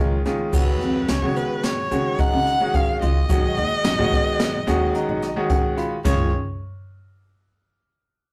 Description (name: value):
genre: progressive instrumental, band music in an uneven meter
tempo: 109 BPM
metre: 5/4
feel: straight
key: Db mixolydian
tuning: A4 = 439 Hz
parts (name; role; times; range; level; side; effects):
- bright grand piano; accompaniment; 0.0-6.3 s; Eb3 to Cb6; -27 LUFS; equal; none
- bell-like tine electric piano; arpeggios; 0.0-6.3 s; Cb4 to Gb4; -32 LUFS; equal; none
- upright bass; bass; 0.0-6.3 s; Cb2 to Db3; -28 LUFS; equal; none
- jazz brush drum kit; drums; 0.3-6.2 s; china cymbal, crash cymbal, hi-hat, kick drum, snare drum, toms; -26 LUFS; equal; none
- warm violin; melody; 0.5-6.3 s; Cb5 to Gb5; -27 LUFS; equal; none
- egg shaker; percussion; 0.5-6.3 s; none; -47 LUFS; equal; none
room: wet small room reverb, RT60 0.5 s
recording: rough rehearsal-room recording, tube saturation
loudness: -21 LUFS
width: mono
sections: 0.5-6.0 A section; 6.0-8.3 B section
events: grand piano fill 5.0-6.0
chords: 0.0 Dbadd9; 0.5 Db7sus4; 3.3 Cb; 6.0 Db